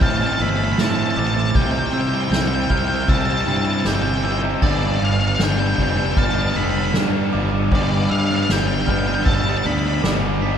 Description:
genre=post-rock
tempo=78 BPM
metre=4/4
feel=straight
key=unclear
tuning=A4 = 442 Hz
part: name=octave-fuzz lead guitar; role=melody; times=0.0-10.0 s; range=D5 to B5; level=-25 LUFS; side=left 1 dB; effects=distortion
part: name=clear studio string section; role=sustained chords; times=0.0-10.6 s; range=E4 to B5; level=-34 LUFS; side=left 1 dB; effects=none
part: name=glockenspiel with hard plastic mallets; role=arpeggios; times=0.0-10.6 s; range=D6 to B6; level=-30 LUFS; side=right 3 dB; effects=none
part: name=distorted electric guitar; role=riff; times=0.0-10.6 s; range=G2 to E4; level=-24 LUFS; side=right 4 dB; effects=distortion
part: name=sludgy distorted guitar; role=riff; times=0.0-10.6 s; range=G2 to E4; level=-25 LUFS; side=left 4 dB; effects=overdrive
part: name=growling fingered electric bass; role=bass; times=0.0-10.6 s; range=F1 to C3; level=-23 LUFS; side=equal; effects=overdrive
part: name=soft-mallet drum kit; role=drums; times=0.0-10.6 s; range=crash cymbal, kick drum, snare drum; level=-23 LUFS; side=equal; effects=none
room=wet concert hall reverb, RT60 2.5 s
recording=recorded in a church or concert hall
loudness=-17 LUFS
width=side -8 dB against mid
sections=0.0-10.6 A section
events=none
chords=0.0 Am7; 1.6 C; 4.6 Gadd9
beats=0.01 0.78 | 1.55 2.32 3.09 3.86 | 4.63 5.41 6.18 6.95 | 7.72 8.49 9.27 10.04

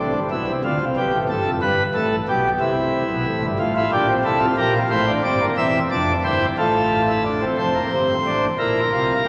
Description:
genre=classical, baroque-style 3-part fugue for pipe organ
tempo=60 BPM (dotted quarters)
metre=6/8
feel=straight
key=F major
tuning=A4 = 440 Hz
part: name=pipe organ, principal chorus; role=solo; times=0.0-9.3 s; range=E1 to E5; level=-20 LUFS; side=equal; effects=none
room=wet cathedral reverb, RT60 4.4 s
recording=none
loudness=-20 LUFS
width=mono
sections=0.0-7.6 A section; 7.6-9.3 B section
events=none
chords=0.0 C; 0.6 Dm7; 1.6 G; 2.6 C; 3.6 F/A; 4.6 Gm7; 5.6 C/E; 6.6 F/A; 7.6 F; 8.6 Bb5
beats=0.64 | 1.63 2.61 | 3.60 4.58 | 5.58 6.59 | 7.59 8.60

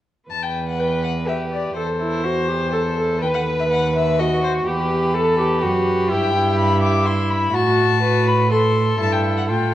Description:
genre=quick classical-period movement for string quartet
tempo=124 BPM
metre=3/4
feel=rubato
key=E minor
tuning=A4 = 440 Hz
part: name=warm violin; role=melody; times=0.3-9.7 s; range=B4 to D6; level=-23 LUFS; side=left 5 dB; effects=none
part: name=rich viola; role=accompaniment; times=0.3-9.7 s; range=E4 to B4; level=-22 LUFS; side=right 1 dB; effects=none
part: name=rich cello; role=bass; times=0.3-9.7 s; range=D#2 to A2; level=-22 LUFS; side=right 2 dB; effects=none
part: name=rich violin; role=second line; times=0.8-9.7 s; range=E4 to C5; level=-24 LUFS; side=left 1 dB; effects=none
room=wet recital hall reverb, RT60 1.6 s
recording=worn, warbling old tape, cassette tape, warbly pitch drift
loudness=-17 LUFS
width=side -13 dB against mid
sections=0.3-9.7 A section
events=none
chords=0.3 Em; 1.8 F#m7b5/E; 3.2 B/D#; 4.7 Em; 6.1 Em/G; 7.5 F#dim/A; 9.0 Em/G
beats=| 0.30 0.79 1.27 | 1.76 2.25 2.74 | 3.22 3.71 4.19 | 4.67 5.15 5.62 | 6.10 6.58 7.06 | 7.54 8.03 8.51 | 9.00 9.49

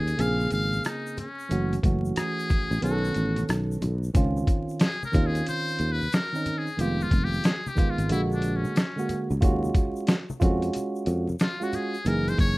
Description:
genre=hip hop, jazz-hop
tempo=91 BPM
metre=4/4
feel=swing 65% on 16ths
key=Db major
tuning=A4 = 439 Hz
part: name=trumpet with metal mute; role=melody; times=0.0-12.6 s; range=Db4 to F5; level=-31 LUFS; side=left 2 dB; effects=slapback echo, plate reverb
part: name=mellow tine electric piano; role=accompaniment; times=0.0-12.6 s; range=Db3 to A4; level=-29 LUFS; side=right 2 dB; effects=overdrive
part: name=sustaining fretless electric bass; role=bass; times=0.0-12.6 s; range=F1 to F2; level=-26 LUFS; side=equal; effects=none
part: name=boom bap sampler-style drum kit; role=drums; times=0.1-12.6 s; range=hi-hat, kick drum, rim click, snare drum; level=-24 LUFS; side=equal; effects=vintage 12-bit sampler grit
part: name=egg shaker and congas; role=percussion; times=0.1-12.6 s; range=none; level=-40 LUFS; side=left 2 dB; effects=none
room=light reverb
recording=rough home demo mix, vinyl crackle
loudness=-23 LUFS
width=side -21 dB against mid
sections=0.0-4.1 A section; 4.1-12.6 B section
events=kick muted 2.8-4.1; muted trumpet solo 4.1-12.6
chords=0.2 Bbm9; 1.5 Gbm7; 2.8 Cb9; 4.1 Dbmaj9; 6.8 Fm7b5; 8.1 Bb7alt; 9.4 Ebm11 (rootless); 12.1 Gb13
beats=0.19 0.85 | 1.51 2.17 2.83 3.49 | 4.15 4.81 5.46 6.12 | 6.78 7.44 8.10 8.76 | 9.42 10.08 10.74 11.40 | 12.06

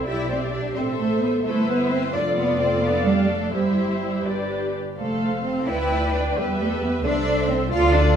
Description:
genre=quick classical-period movement for string orchestra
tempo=82-90 BPM (dotted quarters)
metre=6/8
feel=rubato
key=unclear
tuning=A4 = 440 Hz
part: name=dark studio violin section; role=second line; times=0.0-8.2 s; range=A4 to G5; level=-27 LUFS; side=left 2 dB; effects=none
part: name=rich studio viola section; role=accompaniment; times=0.0-8.2 s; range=D4 to D5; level=-27 LUFS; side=right 1 dB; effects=none
part: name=dark studio double bass section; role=bass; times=0.0-8.2 s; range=F1 to E2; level=-27 LUFS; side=right 1 dB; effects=none
part: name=rich symphonic cello section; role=bass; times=0.0-8.2 s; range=G3 to F4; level=-23 LUFS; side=right 2 dB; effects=none
part: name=rich studio violin section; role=melody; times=0.1-8.2 s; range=G4 to F5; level=-33 LUFS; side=left 4 dB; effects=none
room=moderate scoring stage reverb, RT60 1.7 s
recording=none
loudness=-20 LUFS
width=side -8 dB against mid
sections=0.0-8.2 A section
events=none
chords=0.0 C; 0.8 Am; 2.1 Dm/F; 3.5 C/G; 4.3 G; 5.0 F; 5.7 G6/D; 6.4 Em; 7.0 Am/C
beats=0.07 | 0.76 1.46 | 2.14 2.83 | 3.53 4.26 | 4.98 5.68 | 6.37 7.04 | 7.71

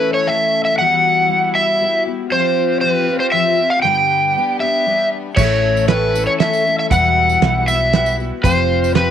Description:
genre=folk rock and heartland rock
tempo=118 BPM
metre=3/4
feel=straight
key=unclear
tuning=A4 = 440 Hz
part: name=overdriven slide guitar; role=melody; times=0.0-9.1 s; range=B4 to G5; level=-15 LUFS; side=right 1 dB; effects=slapback echo
part: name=picked twelve-string acoustic guitar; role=accompaniment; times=0.0-9.1 s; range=G2 to A4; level=-22 LUFS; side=left 11 dB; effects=none
part: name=warm chamber string section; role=sustained chords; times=0.0-9.1 s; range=G3 to A4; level=-28 LUFS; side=equal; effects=none
part: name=bright upright piano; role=accompaniment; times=5.4-9.1 s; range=C4 to G5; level=-28 LUFS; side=right 9 dB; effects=none
part: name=hollow-body short-scale picked electric bass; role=bass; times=5.4-9.1 s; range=E1 to B1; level=-20 LUFS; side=equal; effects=none
part: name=cloth-damped thuddy drum kit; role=drums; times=5.4-9.1 s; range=crash cymbal, hi-hat, kick drum, snare drum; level=-17 LUFS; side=right 5 dB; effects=none
part: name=tambourine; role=percussion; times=5.4-8.9 s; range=none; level=-35 LUFS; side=right 13 dB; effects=none
room=light reverb, small room ambience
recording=1960s-style stereo with parts hard left and right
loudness=-13 LUFS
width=side -9 dB against mid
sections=0.0-9.1 A section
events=none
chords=0.0 A; 0.8 Emadd9; 2.3 Fsus2; 3.8 G; 5.4 A; 6.9 Emadd9; 8.4 Fsus2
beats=0.27 | 0.78 1.29 1.80 | 2.31 2.82 3.33 | 3.85 4.36 4.87 | 5.38 5.89 6.40 | 6.91 7.42 7.93 | 8.44 8.95

